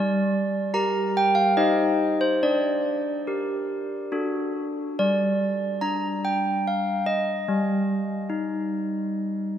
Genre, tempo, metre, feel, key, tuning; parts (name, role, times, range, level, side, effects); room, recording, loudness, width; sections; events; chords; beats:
classical, tune for handbells; 72 BPM; 3/4; straight; G minor; A4 = 440 Hz
handbells; solo; 0.0-9.6 s; G3 to Bb5; -22 LUFS; equal
wet cathedral reverb, RT60 4.2 s; -22 LUFS; side -9 dB against mid
0.0-9.6 A section
0.0 Gm; 1.6 Cm/Eb; 2.4 Gm/D; 4.1 D; 5.0 G5; 7.5 Eb/G
0.74 1.58 | 2.42 3.27 4.13 | 4.98 5.82 6.65 | 7.48 8.29 9.10